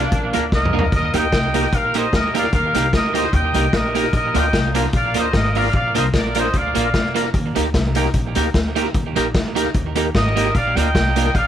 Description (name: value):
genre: ska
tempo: 150 BPM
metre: 4/4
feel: swing 54% on 8ths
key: Eb major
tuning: A4 = 439 Hz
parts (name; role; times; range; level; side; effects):
- clear horn section; melody; 0.0-7.2, 10.2-11.5 s; Bb3 to G5; -21 LUFS; equal; none
- electric guitar at the edge of break-up; accompaniment; 0.0-11.3 s; Bb3 to Bb4; -24 LUFS; right 10 dB; vibrato effect, tape echo
- percussive tonewheel organ; stabs; 0.0-11.3 s; Bb3 to Bb4; -27 LUFS; left 10 dB; overdrive, chorus vibrato, slow rotary speaker
- upright bass; bass; 0.0-11.5 s; F1 to Eb2; -23 LUFS; left 1 dB; none
- vintage drum kit; drums; 0.1-11.5 s; hi-hat, kick drum, snare drum, toms; -21 LUFS; left 1 dB; tape echo
room: moderate spring reverb, RT60 2.0 s, small room reverb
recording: 1960s-style stereo with parts hard left and right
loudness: -16 LUFS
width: side -10 dB against mid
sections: 0.9-11.5 A section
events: drum fill 0.5-0.9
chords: 0.0 Bb; 0.9 Eb; 4.1 Bb; 7.3 Eb; 10.5 Bb